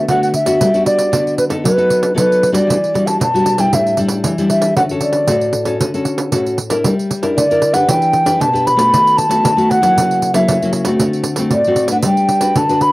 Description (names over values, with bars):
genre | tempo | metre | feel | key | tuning
samba and choro | 116 BPM | 4/4 | straight | unclear | A4 = 440 Hz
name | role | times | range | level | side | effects
mellow baroque flute | melody | 0.0-12.9 s | B4 to B5 | -14 LUFS | equal | cassette tape, plate reverb
nylon-string guitar | accompaniment | 0.0-12.9 s | A2 to B4 | -16 LUFS | left 1 dB | cassette tape, plate reverb
pandeiro | percussion | 0.1-12.9 s | none | -20 LUFS | right 3 dB | none
room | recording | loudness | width
wet booth ambience, RT60 0.2 s | home recording on cassette | -12 LUFS | side -19 dB against mid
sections
0.0-6.8 A section; 6.8-12.9 B section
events
none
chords
0.0 Bm7/D; 0.6 Gmaj7; 1.6 B7/F#; 2.7 Em9; 3.7 A7sus4; 4.8 Dmaj7; 6.8 Gm6; 7.9 Em7; 8.9 B7/D#; 10.0 F#7/C#; 11.0 D7; 12.0 Gmaj7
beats
0.09 | 0.61 1.13 1.65 2.17 | 2.69 3.21 3.73 4.25 | 4.77 5.29 5.81 6.33 | 6.85 7.37 7.89 8.41 | 8.93 9.45 9.96 10.48 | 11.00 11.52 12.04 12.56